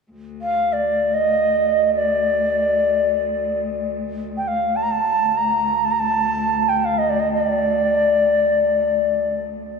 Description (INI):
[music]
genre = turkish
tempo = free time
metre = none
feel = none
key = D makam kurdi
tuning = A4 = 440 Hz
[part]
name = bright cello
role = drone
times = 0.1-9.8 s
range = D2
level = -28 LUFS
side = left 4 dB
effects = none
[part]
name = bright reedy ney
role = melody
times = 0.4-9.3 s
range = D5 to Bb5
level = -18 LUFS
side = equal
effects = none
[sound]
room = wet cathedral reverb, RT60 4.9 s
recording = recorded in a church or concert hall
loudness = -17 LUFS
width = side -5 dB against mid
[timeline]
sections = 0.1-9.8 A section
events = none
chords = none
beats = free time